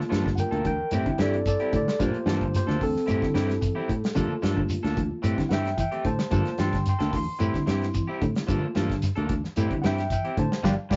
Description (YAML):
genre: afrobeat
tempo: 111 BPM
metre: 4/4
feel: straight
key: unclear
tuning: A4 = 438 Hz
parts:
  - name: tine electric piano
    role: accompaniment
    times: 0.0-11.0 s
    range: G3 to C6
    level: -32 LUFS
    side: equal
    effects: none
  - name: damped 70s drum kit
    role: drums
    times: 0.0-11.0 s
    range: hi-hat, kick drum, snare drum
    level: -34 LUFS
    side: equal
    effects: none
  - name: mellow electric guitar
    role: arpeggios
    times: 0.1-11.0 s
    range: A2 to G3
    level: -34 LUFS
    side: equal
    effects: tremolo
  - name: electric guitar at the edge of break-up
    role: stabs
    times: 0.1-11.0 s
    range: E3 to A4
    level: -36 LUFS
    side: equal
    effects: none
  - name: fingered electric bass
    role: bass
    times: 0.1-11.0 s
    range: G1 to A2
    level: -30 LUFS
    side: equal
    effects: none
  - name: shekere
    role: percussion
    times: 0.1-11.0 s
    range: none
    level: -32 LUFS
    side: equal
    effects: none
room: moderate studio reverb, RT60 0.5 s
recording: rough rehearsal-room recording, nothing above 7.6 kHz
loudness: -26 LUFS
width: mono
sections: 0.0-11.0 A section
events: tine electric piano solo 0.0-11.0; band accent 10.6-11.0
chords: 0.0 Gm9; 0.9 Am7; 2.0 Gm9; 3.1 Am7; 4.2 Gm9; 5.2 Am7; 6.3 Gm9; 7.4 Am7; 8.5 Gm9; 9.6 Am7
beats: 0.38 0.92 1.46 | 2.00 2.54 3.08 3.62 | 4.16 4.70 5.24 5.78 | 6.32 6.86 7.40 7.94 | 8.48 9.02 9.56 10.10 | 10.64